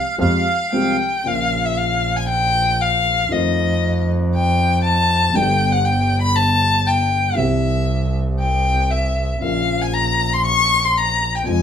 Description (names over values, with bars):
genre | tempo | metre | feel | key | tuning
tango | 118 BPM | 4/4 | rubato | unclear | A4 = 440 Hz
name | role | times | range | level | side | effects
bandoneon | melody | 0.0-1.0 s | F5 | -21 LUFS | right 5 dB | none
warm violin | second line | 0.0-11.6 s | Eb5 to Db6 | -18 LUFS | left 3 dB | none
dark concert grand piano | accompaniment | 0.2-11.6 s | G1 to G4 | -24 LUFS | left 1 dB | none
clear double bass | bass | 0.2-11.6 s | G1 to F2 | -20 LUFS | right 1 dB | none
room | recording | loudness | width
moderate studio reverb, RT60 0.7 s | band playing live in one room | -16 LUFS | side -8 dB against mid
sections
0.0-1.3 A section; 1.3-11.6 B section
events
violin solo 1.3-11.6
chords
0.0 Fmadd9; 1.3 Bbm; 3.3 F7; 5.3 G; 7.4 C; 9.4 Bbm